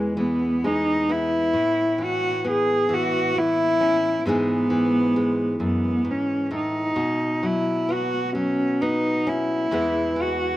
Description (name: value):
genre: acoustic folk-pop ballad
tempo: 44 BPM (dotted quarters)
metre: 6/8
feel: straight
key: E major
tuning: A4 = 440 Hz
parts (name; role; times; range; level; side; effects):
- dark cello; melody; 0.0-10.6 s; G#3 to G#4; -21 LUFS; equal; none
- nylon-string guitar; accompaniment; 0.0-10.6 s; E2 to G#4; -26 LUFS; left 1 dB; slapback echo
room: little or no reverb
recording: recorded outdoors, with no room sound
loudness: -20 LUFS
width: side -15 dB against mid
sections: 0.0-10.6 A section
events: none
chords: 0.0 E; 1.5 Aadd9; 4.3 Emaj7/G#; 7.0 Bsus2; 9.7 E